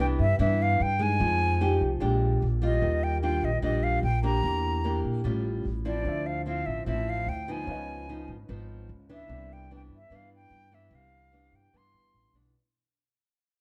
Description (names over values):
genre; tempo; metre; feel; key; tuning
bossa nova; 148 BPM; 4/4; straight; C major; A4 = 440 Hz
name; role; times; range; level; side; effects
silver concert flute; melody; 0.0-12.4 s; D5 to C6; -32 LUFS; equal; none
nylon-string guitar; accompaniment; 0.0-12.5 s; G2 to G4; -33 LUFS; equal; none
upright bass; bass; 0.0-12.5 s; G1 to Bb2; -31 LUFS; equal; none
warm grand piano; accompaniment; 6.0-12.6 s; B3 to E5; -46 LUFS; equal; none
room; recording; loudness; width
moderate large studio reverb, RT60 1.1 s; none; -27 LUFS; mono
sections
0.0-12.5 A section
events
fade-out 0.0-12.5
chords
0.0 Cmaj9; 1.2 Fm9; 2.0 Bb6; 2.8 Ebmaj9; 4.4 Em7b5; 5.2 A7alt; 6.1 Dm9; 7.7 Db9; 9.3 Cmaj9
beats
0.40 0.80 | 1.20 1.61 2.01 2.42 | 2.82 3.23 3.63 4.04 | 4.44 4.85 5.25 5.66 | 6.06 6.46 6.87 7.28 | 7.68 8.09 8.49 8.89 | 9.30 9.71 10.11 10.52 | 10.92 11.32 11.73 12.13